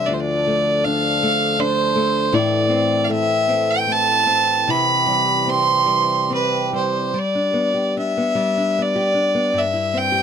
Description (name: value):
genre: celtic folk, Celtic slow air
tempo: 69-81 BPM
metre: 3/4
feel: rubato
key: G mixolydian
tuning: A4 = 437 Hz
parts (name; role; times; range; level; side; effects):
- rich fiddle; melody; 0.0-10.2 s; B4 to C6; -18 LUFS; right 1 dB; none
- nylon-string guitar; accompaniment; 0.0-10.2 s; D2 to G4; -22 LUFS; left 3 dB; none
- pedal harmonium; sustained chords; 0.0-7.1 s; E3 to A4; -27 LUFS; right 3 dB; none
room: light reverb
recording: close, detailed microphones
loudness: -16 LUFS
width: side -8 dB against mid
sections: 0.0-7.2 A section; 7.2-10.2 B section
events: none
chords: 0.1 Dm; 2.3 Am; 4.7 C; 7.2 G; 9.6 C/G